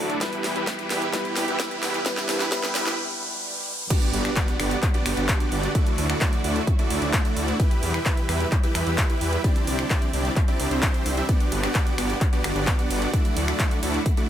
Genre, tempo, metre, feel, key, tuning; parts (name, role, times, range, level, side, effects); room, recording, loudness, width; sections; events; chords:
EDM, festival progressive house; 130 BPM; 4/4; straight; A4 = 440 Hz
warm grand piano; accompaniment; 0.0-3.9 s; F#3 to B4; -32 LUFS; left 2 dB; vintage 12-bit sampler grit, sidechain pumping, digital delay
clear symphonic string section; sustained chords; 0.0-14.3 s; B2 to F#5; -34 LUFS; right 2 dB; sidechain pumping
dense compressed supersaw; riff; 0.0-14.3 s; A3 to E5; -27 LUFS; right 1 dB; sidechain pumping, low-pass filter, digital delay
wide detuned saw bass; bass; 0.0-14.0 s; G1 to E2; -28 LUFS; equal; chorus, sidechain pumping, high-pass filter
riser, swell and impact; sound effects; 0.0-5.8 s; -32 LUFS; equal
big-room dance drum kit; drums; 0.1-14.3 s; crash cymbal, finger snaps, handclaps, hi-hat, ride cymbal, snare drum; -29 LUFS; equal; high-pass filter on snare, high-pass filter on hats, high-pass filter on cymbals, high-pass filter on room
electronic kick drum; drums; 0.2-14.2 s; -23 LUFS; equal; high-pass filter on kick, high-pass filter on room
little or no reverb; high-pass filter; -21 LUFS; side -10 dB against mid
0.0-3.9 A section; 3.9-14.3 B section
build-up 0.0-3.9; drum fill 0.0-3.0; riser 0.0-3.9; filter sweep 0.0-3.9; break 3.0-3.9; swell 3.0-3.9; drop 3.9-14.3; impact 3.9-5.8
0.2 Em; 2.1 Cadd9; 3.9 Gmaj7; 5.8 Dadd9; 7.6 Em; 9.4 Cadd9; 11.3 Gmaj7; 13.1 Dadd9